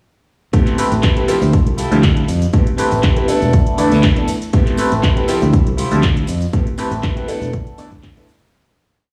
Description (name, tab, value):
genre	filtered disco house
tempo	120 BPM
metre	4/4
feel	swing 54% on 16ths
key	A minor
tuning	A4 = 440 Hz
part	bright grand piano	accompaniment	0.5-8.3 s	F3 to D5	-22 LUFS	equal	phaser, sidechain pumping
part	modern bright fingered electric bass	bass	0.5-8.2 s	E1 to F2	-20 LUFS	equal	sidechain pumping
part	electronic kick drum	drums	0.5-8.1 s	none	-17 LUFS	equal	studio reverb
part	house drum kit	drums	0.5-8.5 s	handclaps, hi-hat, shaker	-29 LUFS	equal	sidechain pumping on hats, studio reverb, sidechain pumping on perc
part	tambourine	percussion	0.5-8.5 s	none	-41 LUFS	equal	sidechain pumping on perc
part	clean electric guitar	riff	0.8-8.3 s	C4 to D5	-25 LUFS	equal	sidechain pumping
room	light reverb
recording	played on a big sound system in a bare room, large studio reverb, small room ambience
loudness	-15 LUFS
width	mono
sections	0.5-8.5 drop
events	drop 0.5-8.5; fade-out 5.9-8.5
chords	0.5 Am9; 1.3 Dm11; 2.5 Am9; 3.5 E7sus4; 4.5 Am9; 5.3 Dm11; 6.5 Am9; 7.5 E7sus4